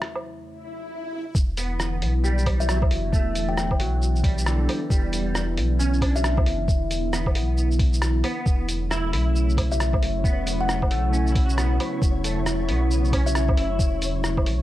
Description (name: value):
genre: future garage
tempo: 135 BPM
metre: 4/4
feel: swing 62% on 16ths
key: E dorian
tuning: A4 = 439 Hz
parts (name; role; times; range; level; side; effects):
- warbly tape-like pad; sustained chords; 0.0-14.6 s; E2 to E4; -30 LUFS; equal; chorus, built-in reverb, sidechain pumping
- lo-fi sampler-style drum kit; drums; 0.0-14.6 s; hi-hat, rim click, shaker, woodblock; -30 LUFS; right 1 dB; none
- flickering grainy texture; texture; 0.4-0.5, 9.3-14.6 s; C#5; -38 LUFS; left 3 dB; built-in reverb
- swell; sound effects; 0.6-1.4 s; none; -34 LUFS; left 1 dB; none
- electronic kick drum; drums; 1.3-14.4 s; none; -22 LUFS; equal; none
- warm sub bass; bass; 1.4-14.6 s; E1 to B1; -24 LUFS; equal; sidechain pumping
- semi-hollow electric guitar; accompaniment; 1.6-14.1 s; D3 to F#4; -31 LUFS; right 2 dB; ensemble chorus, sidechain pumping, analog delay
- kalimba; melody; 2.6-6.6, 9.7-13.7 s; E5 to G5; -32 LUFS; left 3 dB; analog delay
room: light reverb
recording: none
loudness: -20 LUFS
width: side -14 dB against mid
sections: 0.0-1.4 A section; 1.4-14.6 B section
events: break 0.5-1.4; swell 0.6-1.4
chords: 0.0 F#m7/E; 1.4 Em7; 8.5 F#m7/E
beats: 0.02 0.46 0.91 | 1.35 1.80 2.24 2.69 | 3.13 3.58 4.02 4.46 | 4.91 5.35 5.80 6.24 | 6.69 7.13 7.58 8.02 | 8.46 8.91 9.35 9.80 | 10.24 10.69 11.13 11.57 | 12.02 12.46 12.91 13.35 | 13.80 14.24